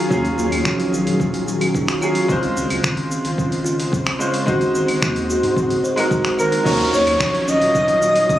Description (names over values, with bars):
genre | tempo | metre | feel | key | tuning
sunset chillout | 110 BPM | 4/4 | straight | Eb dorian | A4 = 440 Hz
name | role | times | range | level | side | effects
bright concert grand piano | accompaniment | 0.0-8.4 s | Gb3 to Db5 | -23 LUFS | equal | auto-pan, tape echo, shimmer reverb
soft string machine | sustained chords | 0.0-8.4 s | Db3 to C5 | -24 LUFS | equal | phaser, ensemble chorus, shimmer reverb
kalimba | arpeggios | 0.1-8.4 s | C4 to C5 | -23 LUFS | equal | vintage 12-bit sampler grit, tape echo, shimmer reverb
round analog bass | bass | 0.1-8.2 s | Eb1 to Ab2 | -26 LUFS | equal | none
dusty soul sampler-style drum kit | drums | 0.1-8.4 s | cabasa, claves, crash cymbal, finger snaps, hi-hat | -26 LUFS | equal | none
electronic kick drum | drums | 0.1-8.4 s | none | -24 LUFS | equal | none
mellow flugelhorn | melody | 6.4-8.4 s | Bb4 to Eb5 | -16 LUFS | equal | none
downlifter | sound effects | 6.7-8.4 s | none | -27 LUFS | equal | none
twinkling granular texture | texture | 7.6-8.4 s | Eb6 | -31 LUFS | equal | built-in reverb, shimmer reverb
room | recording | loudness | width
moderate recital hall reverb, RT60 1.5 s | recorded on a phone in the room, club reverb | -16 LUFS | side -13 dB against mid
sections
0.0-6.7 A section; 6.7-8.4 B section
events
none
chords
0.0 Ebm11; 2.3 Dbmaj7; 4.5 Ab7; 6.7 Ebm9